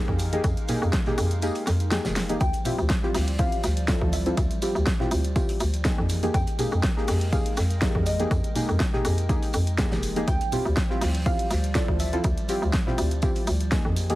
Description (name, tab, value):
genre	deep house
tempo	122 BPM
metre	4/4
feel	swing 54% on 16ths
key	D minor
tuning	A4 = 440 Hz
part	hollow soft pad	sustained chords	0.1-14.2 s	F3 to G5	-37 LUFS	right 1 dB	chorus, sidechain pumping
part	deep mellow chord stab	stabs	0.0-14.2 s	Bb3 to A4	-29 LUFS	left 1 dB	chorus, sidechain pumping
part	hollow knocking FM bass	bass	0.0-14.2 s	F1 to F2	-25 LUFS	equal	sidechain pumping
part	electronic kick drum	drums	0.1-13.8 s	none	-26 LUFS	equal	small room reverb
part	congas	percussion	0.1-14.2 s	none	-34 LUFS	right 2 dB	none
part	cloth-damped thuddy drum kit	drums	0.2-14.2 s	hi-hat, snare drum, tambourine	-42 LUFS	equal	none
part	deep house drum kit	drums	0.2-14.2 s	hi-hat, snare drum	-32 LUFS	equal	small room reverb
part	maracas	percussion	0.2-14.2 s	none	-43 LUFS	right 3 dB	none
part	soft round pluck	melody	2.4-12.5 s	D5 to G5	-34 LUFS	right 1 dB	lush chorus, analog delay
room	little or no reverb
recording	heavily compressed radio sound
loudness	-22 LUFS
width	side -17 dB against mid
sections	0.0-14.2 A section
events	kick drops out 1.4-2.4; drum fill 2.2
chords	0.0 Fm11; 2.4 Dm11; 6.1 Fm11; 10.3 Dm11